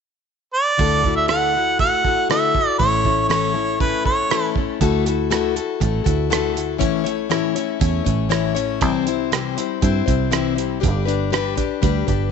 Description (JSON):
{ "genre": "folk rock and heartland rock", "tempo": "120 BPM", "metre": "4/4", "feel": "straight", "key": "unclear", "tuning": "A4 = 438 Hz", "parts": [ { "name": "clear harmonica", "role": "melody", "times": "0.5-4.5 s", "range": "B4 to F#5", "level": "-18 LUFS", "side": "right 3 dB", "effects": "none" }, { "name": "picked plugged-in steel-string acoustic guitar", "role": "accompaniment", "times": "0.8-12.3 s", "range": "A2 to C#5", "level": "-21 LUFS", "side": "left 12 dB", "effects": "none" }, { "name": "fingered electric bass", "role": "bass", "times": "0.8-12.3 s", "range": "G1 to G2", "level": "-23 LUFS", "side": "right 2 dB", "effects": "none" }, { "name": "cloth-damped thuddy drum kit", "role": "drums", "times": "0.8-12.2 s", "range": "hi-hat, kick drum, rim click", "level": "-23 LUFS", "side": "right 5 dB", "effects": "none" } ], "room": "light reverb, studio ambience", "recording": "1960s-style stereo, nothing above 8.0 kHz", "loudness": "-17 LUFS", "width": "side -6 dB against mid", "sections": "0.8-4.8 A section; 4.8-12.3 B section", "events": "none", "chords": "0.0 N.C.; 0.8 Dadd9; 2.8 A; 4.8 Dadd9; 6.8 A; 8.8 C; 10.8 G", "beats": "0.29 | 0.79 1.29 1.79 2.29 | 2.80 3.30 3.80 4.30 | 4.80 5.30 5.80 6.30 | 6.80 7.31 7.81 8.31 | 8.81 9.31 9.81 10.31 | 10.81 11.31 11.81" }